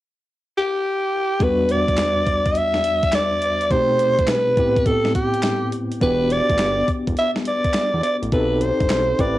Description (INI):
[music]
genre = R&B, new jack swing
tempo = 104 BPM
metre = 4/4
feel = swing 66% on 16ths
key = E minor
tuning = A4 = 440 Hz
[part]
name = breathy alto saxophone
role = melody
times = 0.6-9.4 s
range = G4 to E5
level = -19 LUFS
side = equal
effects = cassette tape
[part]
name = tine electric piano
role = accompaniment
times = 1.4-9.4 s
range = E2 to B4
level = -23 LUFS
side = left 1 dB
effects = fast tremolo, cassette tape
[part]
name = clean 12-bit digital drum machine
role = drums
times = 1.4-9.4 s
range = handclaps, hi-hat, kick drum, snare drum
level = -24 LUFS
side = equal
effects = cassette tape
[part]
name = fat analog bass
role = bass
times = 6.0-9.4 s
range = E1 to E2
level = -25 LUFS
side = equal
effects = none
[sound]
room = wet small room reverb, RT60 0.5 s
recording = home recording on cassette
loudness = -17 LUFS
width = side -15 dB against mid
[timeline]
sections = 0.0-1.4 A section; 1.4-9.4 B section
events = none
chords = 0.0 N.C.; 1.4 Em9; 3.7 B7b9b13; 4.6 Am7; 6.0 Em9; 8.3 B7b9b13